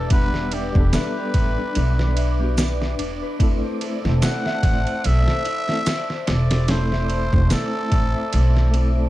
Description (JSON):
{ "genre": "trip hop", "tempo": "73 BPM", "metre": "4/4", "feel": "swing 57% on 16ths", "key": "unclear", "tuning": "A4 = 441 Hz", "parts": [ { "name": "trumpet with cup mute", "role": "melody", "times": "0.0-8.9 s", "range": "G4 to F#5", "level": "-28 LUFS", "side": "equal", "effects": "tape echo" }, { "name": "dark analog pad", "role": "sustained chords", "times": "0.0-9.1 s", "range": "B4 to E6", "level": "-34 LUFS", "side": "left 2 dB", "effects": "chorus" }, { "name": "concert harp", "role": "arpeggios", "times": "0.0-9.1 s", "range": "D4 to C6", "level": "-31 LUFS", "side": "left 4 dB", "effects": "tape echo" }, { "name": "upright bass", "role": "bass", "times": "0.0-9.1 s", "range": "E1 to B1", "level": "-20 LUFS", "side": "equal", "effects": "none" }, { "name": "wind-like tuned noise texture", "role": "texture", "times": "0.2-9.1 s", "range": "D5", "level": "-37 LUFS", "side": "right 11 dB", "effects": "built-in reverb" }, { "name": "tine electric piano", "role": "accompaniment", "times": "0.1-9.1 s", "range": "G3 to F#5", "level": "-28 LUFS", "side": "equal", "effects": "medium tremolo, tape echo" }, { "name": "trip hop sampler-style drum kit", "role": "drums", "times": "0.1-9.0 s", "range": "kick drum, ride cymbal, snare drum", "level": "-23 LUFS", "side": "equal", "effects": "none" }, { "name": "maracas", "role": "percussion", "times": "0.9-7.7 s", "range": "none", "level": "-36 LUFS", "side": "right 2 dB", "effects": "none" } ], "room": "small room reverb", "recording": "dark, warm production", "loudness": "-18 LUFS", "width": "side -16 dB against mid", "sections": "0.0-9.1 A section", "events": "none", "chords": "0.0 Em7; 3.4 Am/E" }